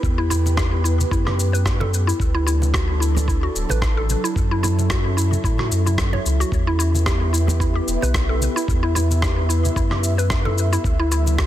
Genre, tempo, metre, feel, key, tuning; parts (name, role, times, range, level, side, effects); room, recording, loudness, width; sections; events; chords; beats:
organic downtempo; 111 BPM; 4/4; swing 56% on 16ths; E dorian; A4 = 440 Hz
airy breathy pad; sustained chords; 0.0-11.5 s; F#3 to E5; -28 LUFS; right 1 dB; chorus, sidechain pumping
mallet-like synth pluck; arpeggios; 0.0-11.5 s; E4 to C#5; -26 LUFS; equal; chorus, vintage 12-bit sampler grit, ping-pong delay
warm sub bass; bass; 0.0-11.5 s; D1 to A2; -20 LUFS; equal; sidechain pumping
electronic kick drum; drums; 0.0-11.5 s; -22 LUFS; equal
electronic shaker and rim click; drums; 0.0-11.5 s; -27 LUFS; left 1 dB; soft clipping on snare
congas; percussion; 0.3-11.4 s; -30 LUFS; right 2 dB
digital ambience; dense, heavily limited modern master; -17 LUFS; side -13 dB against mid
0.0-11.5 A section
0.0 Em; 2.2 Dadd9; 4.4 F#m7; 6.5 Em; 10.8 Dadd9
| 0.04 0.57 1.12 1.66 | 2.20 2.74 3.28 3.82 | 4.36 4.90 5.44 5.98 | 6.52 7.06 7.60 8.14 | 8.68 9.22 9.77 10.30 | 10.85 11.39